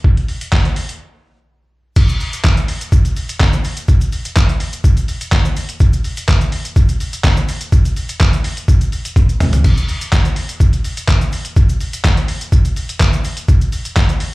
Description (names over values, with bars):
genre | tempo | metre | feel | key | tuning
pop | 125 BPM | 4/4 | straight | none | none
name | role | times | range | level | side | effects
trip hop sampler-style drum kit | drums | 0.0-14.3 s | crash cymbal, handclaps, hi-hat, kick drum, shaker, snare drum, toms | -12 LUFS | equal | none
tube shaker | percussion | 2.0-14.2 s | none | -38 LUFS | left 4 dB | none
room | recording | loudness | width
digital ambience | live gig heard through the venue's PA, club reverb | -13 LUFS | side -22 dB against mid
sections
0.0-2.0 A section; 2.0-14.3 B section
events
break 1.0-2.0; drum fill 9.2-9.6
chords
none